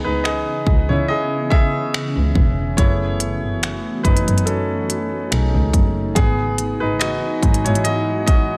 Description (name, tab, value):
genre	contemporary R&B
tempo	71 BPM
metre	4/4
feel	swing 54% on 16ths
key	F# dorian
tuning	A4 = 445 Hz
part	warm concert grand piano	accompaniment	0.0-8.6 s	E3 to E5	-24 LUFS	equal	none
part	ethereal airy pad	sustained chords	0.3-8.6 s	C#3 to F#4	-29 LUFS	equal	ensemble chorus, built-in reverb
part	warm double bass	bass	0.1-8.6 s	E1 to C#3	-24 LUFS	equal	none
part	trap drum kit	drums	0.3-8.5 s	finger snaps, hi-hat, kick drum	-21 LUFS	equal	none
room	light reverb, digital ambience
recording	none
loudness	-19 LUFS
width	mono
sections	0.0-8.6 A section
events	grand piano solo 0.0-8.6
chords	0.0 C#m7; 2.8 F#m11; 5.3 B13; 6.2 Emaj9/G#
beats	0.25 1.09 1.94 | 2.78 3.63 4.47 5.32 | 6.16 7.01 7.85